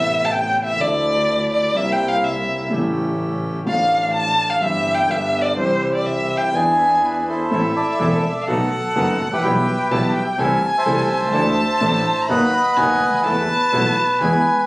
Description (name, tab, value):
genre	tango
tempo	125 BPM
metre	4/4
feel	rubato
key	C major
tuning	A4 = 441 Hz
part	warm violin	second line	0.0-14.7 s	C5 to B5	-19 LUFS	equal	none
part	warm concert grand piano	accompaniment	0.0-14.4 s	E1 to A4	-23 LUFS	equal	none
part	bandoneon	stabs	0.0-14.4 s	F3 to A4	-29 LUFS	right 2 dB	none
part	warm double bass	bass	0.0-14.4 s	E1 to E2	-26 LUFS	equal	none
part	bandoneon	melody	6.8-14.7 s	E4 to A5	-20 LUFS	equal	none
room	moderate club reverb, RT60 0.7 s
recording	recorded on a phone in the room, club reverb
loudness	-16 LUFS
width	side -22 dB against mid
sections	0.0-7.5 A section; 7.5-14.7 B section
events	violin solo 0.0-7.5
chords	0.0 Amadd9; 0.8 Dmadd9; 1.8 C7; 2.7 A7; 3.7 Dm/A; 4.6 C/G; 5.1 G7; 5.6 C; 6.5 E7; 7.5 Am; 8.5 B7; 9.4 Em/B; 10.4 Am/C; 11.3 Dsus2; 12.3 B/D#; 13.3 Esus4